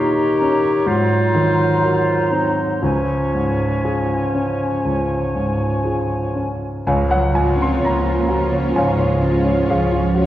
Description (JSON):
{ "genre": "classical, romantic movement for piano and orchestra", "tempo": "58-66 BPM", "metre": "4/4", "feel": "rubato", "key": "Db major", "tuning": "A4 = 442 Hz", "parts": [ { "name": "clear grand piano", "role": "melody", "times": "0.0-10.3 s", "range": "Db2 to C6", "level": "-19 LUFS", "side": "equal", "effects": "none" }, { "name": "bright clarinet", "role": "second line", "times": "0.0-6.3 s", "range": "Db4 to G4", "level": "-22 LUFS", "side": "left 1 dB", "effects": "none" }, { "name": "mellow hollow flute section", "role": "second line", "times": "0.0-6.5 s", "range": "Ab5 to Bb5", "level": "-27 LUFS", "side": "left 2 dB", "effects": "none" }, { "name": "warm oboe", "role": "second line", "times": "0.0-6.5 s", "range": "C5 to Db5", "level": "-28 LUFS", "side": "right 2 dB", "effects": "none" }, { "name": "dark bassoon", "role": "accompaniment", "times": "0.0-6.5 s", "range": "Eb3 to Gb3", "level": "-24 LUFS", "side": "right 2 dB", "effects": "none" }, { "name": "mellow French horn section", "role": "sustained chords", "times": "6.9-10.3 s", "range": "F3 to Db4", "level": "-24 LUFS", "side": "left 1 dB", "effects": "none" }, { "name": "muted symphonic cello section", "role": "bass", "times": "6.9-10.3 s", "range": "F3 to C4", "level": "-25 LUFS", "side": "right 2 dB", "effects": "none" }, { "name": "muted symphonic double bass section", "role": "bass", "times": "6.9-10.3 s", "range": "Db2", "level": "-22 LUFS", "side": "right 1 dB", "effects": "none" }, { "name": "muted symphonic violin section", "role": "melody", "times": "7.3-10.3 s", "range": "Db5", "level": "-28 LUFS", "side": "left 1 dB", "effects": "none" }, { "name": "muted symphonic violin section", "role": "second line", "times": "7.4-10.3 s", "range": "F4", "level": "-28 LUFS", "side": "equal", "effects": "none" }, { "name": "muted symphonic viola section", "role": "accompaniment", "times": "7.4-10.3 s", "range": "Db4", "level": "-28 LUFS", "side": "right 2 dB", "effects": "none" } ], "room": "wet recital hall reverb, RT60 1.6 s", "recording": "worn, warbling old tape, cassette tape, warbly pitch drift", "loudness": "-16 LUFS", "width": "side -13 dB against mid", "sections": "0.0-6.9 A section; 6.9-10.3 A section", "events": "none", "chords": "0.0 Eb7/Bb; 0.9 Ab13; 2.8 Db", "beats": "0.86 1.82 | 2.82 3.84 4.85 5.85 | 6.87 7.83 8.76 9.70" }